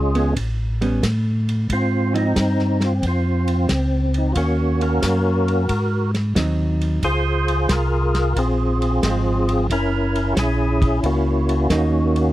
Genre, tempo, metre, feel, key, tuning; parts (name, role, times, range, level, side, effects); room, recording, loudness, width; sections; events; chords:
soul jazz organ trio; 90 BPM; 4/4; swing 68% on 8ths; A4 = 441 Hz
percussive tonewheel organ; melody; 0.0-12.3 s; Ab3 to C5; -20 LUFS; equal; slow rotary speaker, overdrive, chorus vibrato
mellow tonewheel organ; bass; 0.0-12.3 s; Gb1 to A2; -20 LUFS; equal; slow rotary speaker
warm soul drum kit; drums; 0.1-12.3 s; hi-hat, kick drum, ride cymbal, snare drum; -26 LUFS; equal
vintage hollow-body jazz guitar; accompaniment; 0.2-2.3, 6.4-12.3 s; F3 to Eb4; -24 LUFS; right 2 dB
little or no reverb; dry, close 1970s-style studio recording; -17 LUFS; side -15 dB against mid
0.0-12.3 A section
0.4 A9; 1.7 Ab6; 4.4 Ebm7; 5.7 Ab7; 7.0 Dbmaj7; 9.7 Gb13